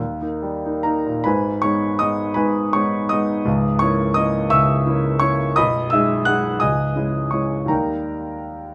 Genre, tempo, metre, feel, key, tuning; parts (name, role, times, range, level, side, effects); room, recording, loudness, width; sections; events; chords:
classical, romantic character piece for solo piano; 56 BPM (dotted quarters); 6/8; uneven beats, rubato; G# minor; A4 = 439 Hz
warm grand piano; solo; 0.0-8.7 s; B0 to F#6; -20 LUFS; equal
light reverb; -20 LUFS; mono
0.0-1.3 A section; 1.3-8.7 B section
0.0 D#; 1.3 G#m; 3.5 A#dim/C#; 5.6 G#m/B; 6.6 C#m; 7.7 D#